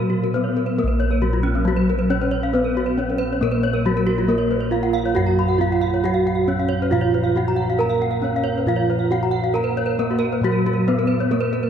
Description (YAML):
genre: Balinese gamelan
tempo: 137 BPM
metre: 4/4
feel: straight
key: Bb pelog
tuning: A4 = 440 Hz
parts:
  - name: gamelan-type bronze metallophone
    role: melody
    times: 0.0-11.7 s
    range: Gb3 to Bb4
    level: -22 LUFS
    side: right 1 dB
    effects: none
  - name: gamelan-type bronze metallophone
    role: accompaniment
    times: 0.0-11.7 s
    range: F3 to Cb4+35c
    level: -28 LUFS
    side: right 5 dB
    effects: none
  - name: gamelan-type bronze metallophone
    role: arpeggios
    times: 0.0-11.7 s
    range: Db4 to Bb5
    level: -28 LUFS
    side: right 6 dB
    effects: none
  - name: gamelan-type bossed gongs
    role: bass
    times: 0.0-11.7 s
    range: Bb1 to Cb5+35c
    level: -23 LUFS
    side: left 1 dB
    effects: none
  - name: gamelan-type bronze metallophone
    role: arpeggios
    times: 0.2-11.6 s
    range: Cb4+35c to Cb6+35c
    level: -25 LUFS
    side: left 5 dB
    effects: none
room: moderate cathedral reverb, RT60 6.2 s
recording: in a vast, echoing space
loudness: -18 LUFS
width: side -8 dB against mid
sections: 0.8-11.7 A section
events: none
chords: none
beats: 0.34 | 0.78 1.22 1.65 2.09 | 2.53 2.97 3.41 3.85 | 4.28 4.72 5.16 5.60 | 6.04 6.48 6.91 7.35 | 7.79 8.23 8.67 9.11 | 9.54 9.98 10.42 10.86 | 11.30